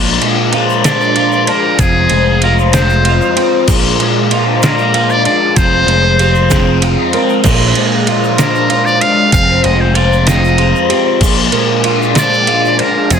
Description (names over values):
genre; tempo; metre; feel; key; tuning
indie rock; 64 BPM (dotted quarters); 6/8; straight; Bb mixolydian; A4 = 440 Hz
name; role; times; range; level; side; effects
mellow tonewheel organ; sustained chords; 0.0-13.2 s; Bb4 to Eb6; -24 LUFS; equal; slow rotary speaker
raw garage guitar; riff; 0.0-13.2 s; F2 to F4; -15 LUFS; left 12 dB; overdrive, phaser
twelve-string electric guitar; riff; 0.0-13.2 s; F2 to F4; -16 LUFS; right 8 dB; analog chorus, slapback echo
picked electric bass; bass; 0.0-13.2 s; F1 to Bb1; -14 LUFS; equal; none
detuned 8-bit digital drum machine; drums; 0.2-13.2 s; crash cymbal, kick drum, ride cymbal, snare drum; -16 LUFS; equal; none
egg shaker; percussion; 0.7-13.2 s; none; -28 LUFS; right 13 dB; none
trumpet with metal mute; melody; 0.8-13.2 s; Ab4 to F5; -14 LUFS; equal; slapback echo
mellow tine electric piano; second line; 3.4-12.0 s; F4 to Bb4; -21 LUFS; right 10 dB; none
room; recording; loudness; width
light reverb, digital ambience; dense, heavily limited modern master; -9 LUFS; side -7 dB against mid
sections
0.0-13.2 A section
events
none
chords
0.0 Bb7; 1.8 Fm7; 3.7 Bb7; 5.6 Fm7; 7.5 Bb7; 9.3 Fm7; 11.2 Bb7